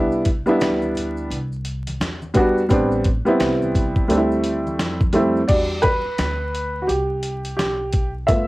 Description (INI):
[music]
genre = hip hop, jazz-hop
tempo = 86 BPM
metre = 4/4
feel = swing 62% on 16ths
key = E minor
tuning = A4 = 441 Hz
[part]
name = dark upright piano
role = accompaniment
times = 0.0-8.5 s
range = G3 to E5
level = -19 LUFS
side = equal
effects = cassette tape
[part]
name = upright bass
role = bass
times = 0.0-8.5 s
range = G1 to F2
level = -28 LUFS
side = equal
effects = none
[part]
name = maracas and congas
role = percussion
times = 0.1-5.5 s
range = none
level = -38 LUFS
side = left 1 dB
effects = none
[part]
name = dusty soul sampler-style drum kit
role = drums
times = 0.3-8.5 s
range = crash cymbal, hi-hat, kick drum, snare drum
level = -22 LUFS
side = equal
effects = cassette tape
[sound]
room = light reverb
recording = home recording on cassette, vinyl crackle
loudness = -18 LUFS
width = side -20 dB against mid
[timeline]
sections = 0.0-5.5 A section; 5.5-8.5 A section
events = upright piano solo 5.5-8.5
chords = 0.0 Cmaj7; 2.7 Am11; 4.1 D9sus4; 5.5 Em9